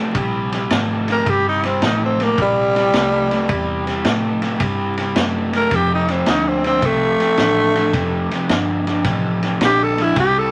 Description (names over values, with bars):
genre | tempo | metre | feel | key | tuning
electric blues shuffle | 108 BPM | 4/4 | swing 67% on 8ths | unclear | A4 = 443 Hz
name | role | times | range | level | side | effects
raw garage guitar | riff | 0.0-10.5 s | F2 to A3 | -23 LUFS | equal | overdrive
vintage muted fingered electric bass | bass | 0.1-10.5 s | F1 to A2 | -29 LUFS | equal | none
vintage drum kit | drums | 0.1-10.3 s | kick drum, ride cymbal, snare drum | -25 LUFS | equal | none
growling tenor saxophone | melody | 1.1-10.5 s | G3 to Bb4 | -20 LUFS | equal | none
room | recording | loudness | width
moderate studio reverb, RT60 0.7 s | vinyl crackle, nothing above 10.9 kHz | -18 LUFS | mono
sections
0.0-10.5 A section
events
tenor saxophone solo 0.0-10.5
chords
0.0 C7(no3); 5.7 F